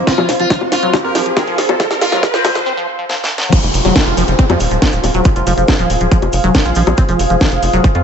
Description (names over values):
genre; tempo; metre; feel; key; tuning
psychedelic trance; 139 BPM; 4/4; straight; F phrygian; A4 = 440 Hz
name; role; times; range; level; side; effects
bubbling stepped-filter texture; sustained chords; 0.0-8.0 s; Ab3 to C5; -25 LUFS; right 1 dB; chorus, built-in reverb, sidechain pumping
liquid acid bass; riff; 0.0-8.0 s; F3 to F4; -20 LUFS; left 1 dB; phaser, auto-pan, cassette tape, sidechain pumping, tape echo
tight sequencer bass; bass; 0.0-8.0 s; Eb1 to F2; -18 LUFS; equal; none
riser and downlifter; sound effects; 0.0-7.0 s; none; -22 LUFS; right 1 dB; none
airy breathy pad; texture; 0.0-8.0 s; F4 to F5; -21 LUFS; right 1 dB; chorus, sidechain pumping
sitar; melody; 0.1-2.5 s; C4 to Bb4; -20 LUFS; equal; phaser, sidechain pumping, low-pass filter, ping-pong delay
electronic kick drum; drums; 0.1-7.9 s; none; -13 LUFS; equal; studio reverb
garage drum kit; drums; 0.1-8.0 s; bongos, crash cymbal, hi-hat, snare drum; -18 LUFS; left 1 dB; studio reverb
tube shaker; percussion; 3.5-7.9 s; none; -32 LUFS; left 2 dB; none
room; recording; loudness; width
light reverb; high-pass filter, nothing above 8.0 kHz; -11 LUFS; side -7 dB against mid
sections
0.0-3.5 A section; 3.5-8.0 B section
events
build-up 0.0-3.5; drum fill 0.0-2.7, 3.1-3.5; riser 0.0-2.7; filter sweep on acid bass 0.0-3.5; filter sweep on sitar 0.0-3.5; filter sweep on synth texture 0.0-3.5; filter sweep 0.0-3.5; break 2.7-3.5; drop 3.5-8.0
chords
0.0 F5